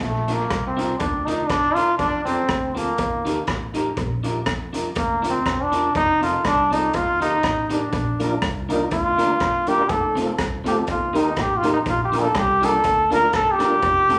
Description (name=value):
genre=ska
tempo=122 BPM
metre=4/4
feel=swing 55% on 8ths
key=Bb major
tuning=A4 = 439 Hz
part: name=bright trombone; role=melody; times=0.0-14.2 s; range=A3 to Bb4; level=-22 LUFS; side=equal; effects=none
part: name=upright bass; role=bass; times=0.0-14.2 s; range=E1 to F2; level=-33 LUFS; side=equal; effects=none
part: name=raw garage drum kit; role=drums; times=0.0-14.2 s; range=hi-hat, kick drum, rim click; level=-30 LUFS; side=equal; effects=dub echo
part: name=electric guitar at the edge of break-up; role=accompaniment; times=0.3-14.2 s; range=C4 to Bb4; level=-30 LUFS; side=equal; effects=dub echo
part: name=mellow tonewheel organ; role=stabs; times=8.2-14.2 s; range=A3 to Bb4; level=-28 LUFS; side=equal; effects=overdrive, chorus vibrato, fast rotary speaker
room=wet large studio reverb, RT60 0.9 s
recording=none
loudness=-21 LUFS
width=mono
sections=0.0-14.2 A section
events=trombone solo 0.0-14.2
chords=0.0 Bb; 2.0 F; 3.0 Eb; 4.0 Bb; 5.9 F; 6.9 Eb; 7.9 Bb; 9.9 F; 10.9 Eb; 11.9 Bb